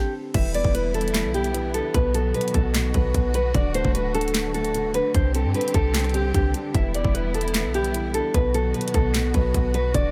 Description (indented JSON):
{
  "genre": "hip hop, trap",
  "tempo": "150 BPM",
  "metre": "4/4",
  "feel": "half-time",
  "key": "E minor",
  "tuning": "A4 = 440 Hz",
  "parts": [
    { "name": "nylon-string guitar", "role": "melody", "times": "0.0-10.1 s", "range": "G4 to E5", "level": "-28 LUFS", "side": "equal", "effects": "low-pass filter, tape echo" },
    { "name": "dark concert grand piano", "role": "accompaniment", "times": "0.0-10.1 s", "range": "B2 to D4", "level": "-32 LUFS", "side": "equal", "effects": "low-pass filter" },
    { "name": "dark symphonic string section", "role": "sustained chords", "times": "0.3-10.1 s", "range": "D3 to G4", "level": "-35 LUFS", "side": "equal", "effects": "none" },
    { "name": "clean 808-style bass", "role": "bass", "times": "0.3-10.1 s", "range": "D1 to G2", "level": "-27 LUFS", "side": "equal", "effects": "none" },
    { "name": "trap drum kit", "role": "drums", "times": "0.3-10.0 s", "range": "crash cymbal, handclaps, hi-hat, kick drum, rim click, snare drum", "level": "-27 LUFS", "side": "equal", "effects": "none" }
  ],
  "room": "small room reverb",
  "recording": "none",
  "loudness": "-23 LUFS",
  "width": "mono",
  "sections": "0.3-10.1 A section",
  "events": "stop 0.0-0.3",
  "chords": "0.3 Em7; 1.9 B; 3.5 D; 5.1 Csus2; 6.7 Em7; 8.3 B"
}